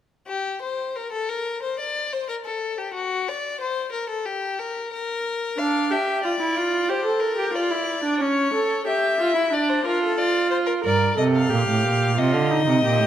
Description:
classical, baroque-style fugue for string quartet; 91 BPM; 4/4; straight; G minor; A4 = 440 Hz
clear violin; second line; 0.3-13.1 s; F#4 to F5; -25 LUFS; left 4 dB
rich viola; accompaniment; 5.6-13.1 s; C#4 to Bb4; -22 LUFS; right 2 dB
rich cello; bass; 10.9-13.1 s; G2 to D3; -20 LUFS; right 4 dB
moderate scoring stage reverb, RT60 2.2 s; -21 LUFS; side -10 dB against mid
0.3-13.1 A section
0.3 N.C.; 5.6 Dm; 6.9 Gm; 8.2 A7/C#; 9.5 Dm; 10.9 Gm

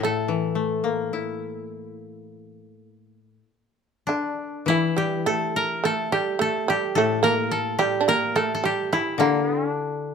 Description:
japanese traditional, Japanese chamber music; 49-56 BPM; 4/4; rubato; A in sen; A4 = 440 Hz
koto; melody; 0.0-10.1 s; D4 to Bb4; -25 LUFS; left 1 dB
shamisen; second line; 0.0-10.1 s; D3 to D4; -25 LUFS; right 6 dB
koto; accompaniment; 0.0-10.1 s; A2 to E4; -26 LUFS; left 7 dB
moderate recital hall reverb, RT60 1.4 s; close, detailed microphones; -21 LUFS; side -6 dB against mid
0.0-4.7 A section; 4.7-10.1 B section

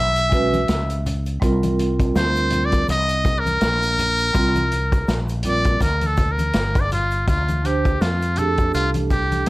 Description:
hip hop, jazz-hop; 82 BPM; 4/4; swing 57% on 16ths; A4 = 439 Hz
trumpet with metal mute; melody; 0.0-9.5 s; F4 to E5; -21 LUFS; equal; plate reverb
mellow fretless electric bass; bass; 0.0-9.4 s; G1 to F2; -23 LUFS; equal
vintage drum kit; drums; 0.2-9.5 s; hi-hat, kick drum, snare drum; -23 LUFS; equal
egg shaker and congas; percussion; 0.2-9.5 s; -30 LUFS; left 2 dB
vibraphone with soft mallets; accompaniment; 0.3-9.5 s; G3 to C5; -22 LUFS; right 2 dB; plate reverb
light reverb; dark, warm production; -17 LUFS; side -19 dB against mid
0.0-7.3 A section; 7.3-9.5 B section
muted trumpet solo 0.0-7.3
0.0 C#m7; 1.4 Csus2; 7.3 Dm7

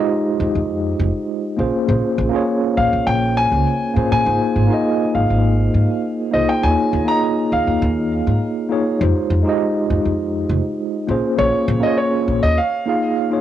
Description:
sunset chillout; 101 BPM; 4/4; straight; A4 = 440 Hz
mellow tine electric piano; accompaniment; 0.0-13.4 s; Ab3 to F5; -18 LUFS; moving between left 2 dB and right 4 dB; medium stereo tremolo, auto-pan, cassette tape, analog delay
upright bass; bass; 0.4-12.6 s; F1 to Bb2; -19 LUFS; equal; tube saturation
warm grand piano; melody; 2.8-13.4 s; Db5 to Bb5; -20 LUFS; left 1 dB; cassette tape, plate reverb, tape echo
moderate studio reverb, RT60 0.5 s; home recording on cassette; -16 LUFS; side -11 dB against mid
0.0-13.4 A section
break 12.6-13.4
0.0 Fm9; 1.6 Bbm9; 4.3 Ab6; 6.6 Eb9sus4; 9.0 Fm9; 11.1 Bbm9; 12.6 Ebsus4

